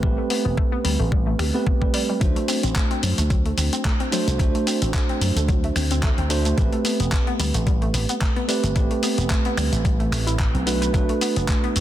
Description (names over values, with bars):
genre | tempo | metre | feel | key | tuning
nu-disco, nu disco | 110 BPM | 4/4 | swing 55% on 16ths | A dorian | A4 = 440 Hz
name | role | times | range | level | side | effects
bell-like tine electric piano | accompaniment | 0.0-11.8 s | A3 to C5 | -25 LUFS | right 3 dB | sidechain pumping, ping-pong delay
analog pluck | arpeggios | 0.0-11.8 s | F#3 to B4 | -29 LUFS | left 3 dB | chorus, sidechain pumping, ping-pong delay
slap bass with an envelope filter | bass | 0.0-11.8 s | E1 to F#2 | -23 LUFS | equal | none
electronic kick drum | drums | 0.0-11.6 s | none | -21 LUFS | equal | none
dusty soul sampler-style drum kit | drums | 0.3-11.8 s | finger snaps, handclaps, hi-hat, shaker | -27 LUFS | equal | none
room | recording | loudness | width
light reverb, digital ambience | dense, heavily limited modern master | -19 LUFS | side -12 dB against mid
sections
0.0-11.8 A section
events
none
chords
0.0 Am9; 2.2 D7; 6.6 Am9; 10.7 Bm7